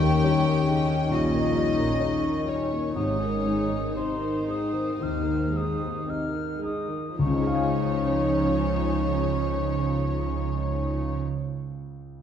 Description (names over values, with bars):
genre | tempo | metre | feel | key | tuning
cinematic, emotional film score for orchestra | 53-71 BPM | 4/4 | rubato | Db major | A4 = 439 Hz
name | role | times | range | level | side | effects
warm studio violin section | melody | 0.0-11.2 s | C5 to G5 | -32 LUFS | left 2 dB | none
dark studio violin section | second line | 0.0-11.2 s | C4 to G4 | -36 LUFS | left 2 dB | none
mellow clarinet | second line | 0.0-11.2 s | Eb4 | -33 LUFS | left 4 dB | none
silver concert flute | second line | 0.0-11.2 s | C6 to F6 | -35 LUFS | left 2 dB | none
clear concert grand piano | accompaniment | 0.0-12.2 s | Db2 to Ab5 | -29 LUFS | left 4 dB | none
dark studio viola section | accompaniment | 0.0-11.2 s | C3 to Eb4 | -30 LUFS | right 2 dB | none
concert harp | arpeggios | 0.0-11.5 s | Ab2 to Eb6 | -38 LUFS | left 10 dB | none
dark studio double bass section | bass | 0.0-11.2 s | Ab1 to Eb2 | -32 LUFS | right 4 dB | none
warm studio cello section | bass | 0.0-11.2 s | Eb2 to Db3 | -33 LUFS | right 2 dB | none
room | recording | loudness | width
wet scoring stage reverb, RT60 1.8 s | dark, warm production | -23 LUFS | side -8 dB against mid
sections
0.0-7.2 A section; 7.2-11.6 B section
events
slowing down 0.0-7.2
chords
0.0 Eb7; 3.0 Ab; 7.2 Dbadd9